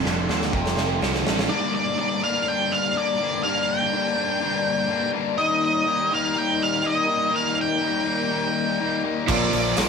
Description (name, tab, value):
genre	classic rock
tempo	123 BPM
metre	4/4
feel	straight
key	unclear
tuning	A4 = 442 Hz
part	picked old ladder-braced acoustic guitar	accompaniment	0.0-1.5, 9.3-9.9 s	F2 to F4	-38 LUFS	left 5 dB	none
part	crunchy overdriven guitar	riff	0.0-9.9 s	F2 to Eb4	-24 LUFS	left 6 dB	none
part	crunchy overdriven guitar	riff	0.0-1.5, 9.3-9.9 s	F2 to Bb3	-26 LUFS	right 9 dB	phaser
part	growling picked electric bass	bass	0.0-1.5, 9.3-9.9 s	F1 to Eb2	-29 LUFS	right 1 dB	overdrive
part	tack piano	accompaniment	0.1-1.5, 9.3-9.9 s	F4 to F5	-35 LUFS	right 6 dB	none
part	big rock drum kit	drums	0.1-1.5, 9.3-9.9 s	crash cymbal, hi-hat, kick drum, snare drum	-26 LUFS	right 1 dB	none
part	octave-fuzz lead guitar	melody	1.5-9.8 s	D5 to G5	-24 LUFS	right 2 dB	distortion
part	string machine, full ensemble	sustained chords	1.5-9.9 s	Bb3 to Bb4	-33 LUFS	right 2 dB	ensemble chorus
part	group handclap	percussion	9.8-9.9 s	none	-34 LUFS	right 6 dB	none
room	moderate stone room reverb, RT60 1.2 s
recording	band playing live in one room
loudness	-20 LUFS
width	side -6 dB against mid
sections	0.0-1.5 A section; 1.5-9.9 B section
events	drum fill 0.0-1.5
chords	0.0 F; 1.5 Gm; 5.4 Eb; 9.3 Bb